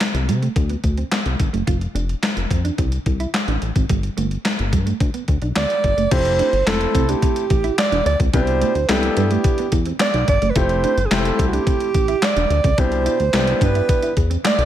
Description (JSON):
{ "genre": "early-eighties boogie funk", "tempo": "108 BPM", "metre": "4/4", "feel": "straight", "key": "C major", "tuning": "A4 = 440 Hz", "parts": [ { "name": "mellow electric guitar", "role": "riff", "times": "0.0-14.5 s", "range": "G3 to F4", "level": "-28 LUFS", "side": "right 7 dB", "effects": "wide subtle chorus" }, { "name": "clean 12-bit digital drum machine", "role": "drums", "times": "0.0-14.7 s", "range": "crash cymbal, handclaps, hi-hat, kick drum, snare drum", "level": "-21 LUFS", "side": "left 1 dB", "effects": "gated reverb" }, { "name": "chorused synth bass", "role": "bass", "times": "0.1-14.7 s", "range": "E1 to C3", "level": "-21 LUFS", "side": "left 1 dB", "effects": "none" }, { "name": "warm alto saxophone", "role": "melody", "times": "5.6-14.7 s", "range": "F#4 to D5", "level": "-20 LUFS", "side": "right 4 dB", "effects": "slapback echo" }, { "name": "clear baby grand piano", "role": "accompaniment", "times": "6.1-14.1 s", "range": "B2 to A4", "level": "-24 LUFS", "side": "left 5 dB", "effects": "none" } ], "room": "light reverb", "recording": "none", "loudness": "-16 LUFS", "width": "side -11 dB against mid", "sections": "0.0-6.1 A section; 6.1-14.7 B section", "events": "none", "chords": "0.0 Csus2; 1.7 F5; 3.9 G; 6.1 Fmaj7; 8.3 Cmaj9; 10.6 Fmaj7; 12.8 Cmaj9" }